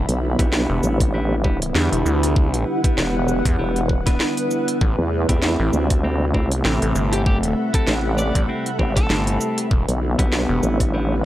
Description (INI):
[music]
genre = glitch hop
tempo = 98 BPM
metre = 4/4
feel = swing 56% on 16ths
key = A dorian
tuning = A4 = 439 Hz
[part]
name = warm analog pad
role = sustained chords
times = 0.0-11.2 s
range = C3 to F#5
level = -28 LUFS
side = equal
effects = lush chorus, sidechain pumping
[part]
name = gritty driven synth bass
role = bass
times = 0.0-10.6 s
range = E1 to E2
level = -21 LUFS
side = equal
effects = tube saturation
[part]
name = granular cloud pad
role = texture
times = 0.0-11.2 s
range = E4 to B5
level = -28 LUFS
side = equal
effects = built-in reverb, sidechain pumping
[part]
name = vowel-sweep wobble bass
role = bass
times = 0.1-11.2 s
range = E1 to E2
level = -21 LUFS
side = equal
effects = chorus, tube saturation
[part]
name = drum and bass drum kit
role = drums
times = 0.1-10.9 s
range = hi-hat, rim click, shaker, snare drum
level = -24 LUFS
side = right 1 dB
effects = none
[part]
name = clean electric guitar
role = stabs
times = 0.4-11.1 s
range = A3 to B4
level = -26 LUFS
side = equal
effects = sidechain pumping, tape echo
[part]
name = electronic kick drum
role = drums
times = 0.4-10.9 s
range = none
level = -19 LUFS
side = equal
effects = none
[part]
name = lightly driven lead guitar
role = melody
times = 7.1-9.6 s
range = G4 to D5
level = -30 LUFS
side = equal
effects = vintage 12-bit sampler grit, tape echo
[sound]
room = digital ambience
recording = dry, gritty hardware recording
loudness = -17 LUFS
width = side -14 dB against mid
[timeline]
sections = 0.0-11.2 A section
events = none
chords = 0.0 Em7; 4.8 Am7; 9.7 Em7